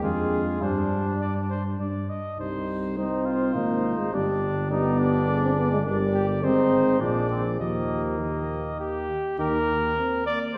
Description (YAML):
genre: classical, brass quintet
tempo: 103 BPM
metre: 3/4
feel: straight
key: Eb major from 5.9 s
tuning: A4 = 439 Hz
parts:
  - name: clear cornet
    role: melody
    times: 0.0-10.6 s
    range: G4 to Eb5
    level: -33 LUFS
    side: equal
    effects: none
  - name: mellow trumpet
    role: second line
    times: 0.0-9.6 s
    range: Bb3 to G4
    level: -34 LUFS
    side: equal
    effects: none
  - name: dark trombone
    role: accompaniment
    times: 0.0-10.6 s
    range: Eb3 to C4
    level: -29 LUFS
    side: equal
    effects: none
  - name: mellow French horn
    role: accompaniment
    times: 0.0-9.6 s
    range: D4 to Bb4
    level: -35 LUFS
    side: equal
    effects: none
  - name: mellow tuba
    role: bass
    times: 0.0-9.9 s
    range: G1 to G2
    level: -32 LUFS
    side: equal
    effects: none
room: wet concert hall reverb, RT60 2.0 s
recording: heard from further back in the room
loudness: -25 LUFS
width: mono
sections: 0.0-9.4 A section; 9.4-10.6 B section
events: none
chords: 0.0 Ddim/F; 0.6 Gsus4; 2.4 Cm; 4.1 G; 5.9 Gm; 6.4 Ab; 7.0 Bb7; 7.6 Eb; 9.4 Eb5